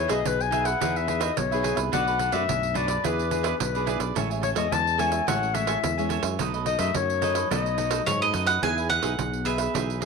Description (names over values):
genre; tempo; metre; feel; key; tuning
samba and choro; 107 BPM; 4/4; straight; E major; A4 = 440 Hz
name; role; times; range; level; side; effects
warm clarinet; second line; 0.0-8.3 s; B4 to A5; -26 LUFS; left 9 dB; none
cavaquinho; accompaniment; 0.0-10.1 s; D4 to G#5; -30 LUFS; right 13 dB; none
nylon-string guitar; accompaniment; 0.0-10.1 s; F#2 to G#4; -33 LUFS; left 9 dB; none
fingered electric bass with an envelope filter; bass; 0.0-10.1 s; A1 to G#2; -30 LUFS; right 1 dB; none
pandeiro; percussion; 0.1-10.1 s; none; -31 LUFS; right 12 dB; none
bowl-back mandolin; melody; 8.1-10.0 s; C#5 to G#5; -26 LUFS; right 4 dB; none
room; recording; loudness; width
moderate echo chamber reverb, RT60 1.4 s, small room ambience; 1960s-style stereo with parts hard left and right; -22 LUFS; side -5 dB against mid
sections
0.0-8.6 A section; 8.6-10.1 B section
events
clarinet solo 0.0-8.6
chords
0.0 Emaj7; 1.9 Bm7; 3.0 E7; 4.2 Amaj7; 6.4 B7; 8.6 Emaj7